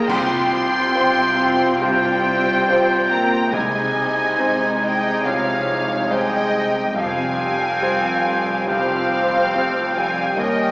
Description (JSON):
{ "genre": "cinematic, emotional film score for orchestra", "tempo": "70 BPM", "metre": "4/4", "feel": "rubato", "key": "F minor", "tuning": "A4 = 440 Hz", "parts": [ { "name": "dark studio violin section", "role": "melody", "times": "0.0-10.7 s", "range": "F5 to C6", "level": "-24 LUFS", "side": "equal", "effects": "none" }, { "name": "clear clarinet", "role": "second line", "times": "0.0-10.7 s", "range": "C4 to F4", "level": "-27 LUFS", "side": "equal", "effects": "none" }, { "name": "dark studio violin section", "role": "second line", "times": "0.0-10.7 s", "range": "C5 to G5", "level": "-26 LUFS", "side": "equal", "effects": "none" }, { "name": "flute section", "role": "second line", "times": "0.0-10.7 s", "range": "C5 to G5", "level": "-28 LUFS", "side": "equal", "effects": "none" }, { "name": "bright concert grand piano", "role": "accompaniment", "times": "0.0-10.7 s", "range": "C2 to C5", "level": "-26 LUFS", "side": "equal", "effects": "none" }, { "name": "dark French horn section", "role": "sustained chords", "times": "0.0-10.7 s", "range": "F3 to C4", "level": "-27 LUFS", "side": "equal", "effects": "none" }, { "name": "bright oboe", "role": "second line", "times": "0.1-10.7 s", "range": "Eb5 to Ab5", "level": "-23 LUFS", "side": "equal", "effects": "none" }, { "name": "rich studio viola section", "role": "accompaniment", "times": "0.1-10.7 s", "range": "G3 to Bb4", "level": "-26 LUFS", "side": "equal", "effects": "none" }, { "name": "warm studio cello section", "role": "bass", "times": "0.1-10.7 s", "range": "Eb2 to C3", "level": "-28 LUFS", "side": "equal", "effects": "none" }, { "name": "warm studio double bass section", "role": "bass", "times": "0.1-10.7 s", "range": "F1 to Eb2", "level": "-34 LUFS", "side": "equal", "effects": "none" }, { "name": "clash cymbals and concert bass drum", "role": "percussion", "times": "0.1-1.8 s", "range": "none", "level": "-32 LUFS", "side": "equal", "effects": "none" }, { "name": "timpani", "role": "percussion", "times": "0.1-8.2 s", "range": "F2 to C3", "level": "-35 LUFS", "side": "equal", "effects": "none" } ], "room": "wet scoring stage reverb, RT60 1.5 s", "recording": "heard from further back in the room, small speaker sound", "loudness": "-16 LUFS", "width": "side -27 dB against mid", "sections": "0.1-10.7 A section", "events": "band accent 0.1-0.9", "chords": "0.1 Csus4; 3.5 Ab/C; 7.0 Fmadd9", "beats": "| 0.08 0.95 1.81 2.67 | 3.52 4.38 5.24 6.10 | 6.96 7.82 8.68 9.54 | 10.38" }